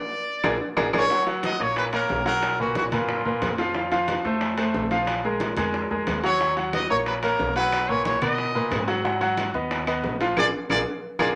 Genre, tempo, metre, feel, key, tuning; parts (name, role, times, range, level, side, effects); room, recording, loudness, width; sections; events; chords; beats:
latin, salsa; 181 BPM; 4/4; straight; A4 = 442 Hz
bright trumpet; melody; 0.0-3.6, 6.2-11.3 s; F4 to D#5; -27 LUFS; equal
clear baby grand piano; accompaniment; 0.4-11.3 s; Bb2 to F#5; -27 LUFS; equal
upright bass; bass; 0.4-11.3 s; Bb1 to B2; -38 LUFS; equal
bongos; percussion; 0.4-11.3 s; -35 LUFS; equal
claves; percussion; 0.4-1.0, 6.7-11.3 s; -37 LUFS; equal
congas; percussion; 0.4-11.3 s; -39 LUFS; equal
timbales; percussion; 0.4-11.3 s; -35 LUFS; equal
wet studio reverb, RT60 0.7 s; -24 LUFS; mono
0.0-1.1 A section; 1.1-11.4 B section
drum fill 0.0-1.1, 11.2; band accent 0.0-1.1, 10.4-11.4
0.0 Bb7; 1.1 Bmaj7sus2; 2.4 B5; 3.8 F; 5.1 Bb5; 6.4 Ebm7; 7.7 Bmaj7; 9.0 Abm7; 10.4 Bb7
0.11 0.44 0.77 | 1.10 1.43 1.76 2.10 | 2.43 2.76 3.09 3.42 | 3.75 4.08 4.41 4.74 | 5.08 5.41 5.74 6.07 | 6.40 6.73 7.06 7.39 | 7.72 8.05 8.38 8.71 | 9.05 9.38 9.71 10.04 | 10.37 10.70 11.03